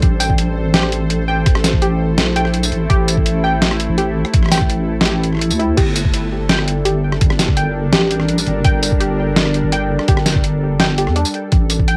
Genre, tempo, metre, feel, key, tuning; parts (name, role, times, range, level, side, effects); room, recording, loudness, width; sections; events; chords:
half-time drum and bass; 167 BPM; 4/4; half-time; G dorian; A4 = 440 Hz
bowed-like drone; sustained chords; 0.0-12.0 s; G3 to C5; -25 LUFS; equal; built-in reverb, sidechain pumping, cassette tape
deep soft wobble bass; bass; 0.0-12.0 s; G1 to E2; -21 LUFS; equal; chorus
boom bap sampler-style drum kit; drums; 0.0-12.0 s; crash cymbal, hi-hat, rim click, snare drum, tambourine; -20 LUFS; equal; cassette tape
electronic kick drum; drums; 0.0-11.9 s; -17 LUFS; equal; cassette tape
warbly dusty pluck; arpeggios; 0.2-12.0 s; D4 to G5; -24 LUFS; equal; chorus, vintage 12-bit sampler grit, cassette tape, tape echo
light reverb; home recording on cassette; -16 LUFS; mono
0.0-12.0 A section
0.0 Am; 5.8 Gm